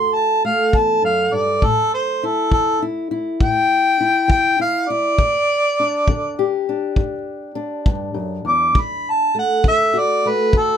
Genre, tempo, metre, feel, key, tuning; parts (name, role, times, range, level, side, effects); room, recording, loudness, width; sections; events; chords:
acoustic country blues, solo or duo; 67 BPM (dotted quarters); 12/8; straight; D mixolydian; A4 = 439 Hz
mellow harmonica; melody; 0.0-10.8 s; A4 to D6; -16 LUFS; equal
fingerpicked old ladder-braced acoustic guitar; accompaniment; 0.0-10.8 s; D2 to G4; -22 LUFS; left 1 dB
kick drum; drums; 0.7-10.7 s; -17 LUFS; equal
light reverb; -15 LUFS; side -8 dB against mid
0.0-10.8 A section
harmonica solo 0.0-10.8
0.0 D; 1.6 A5; 5.2 G5; 8.8 D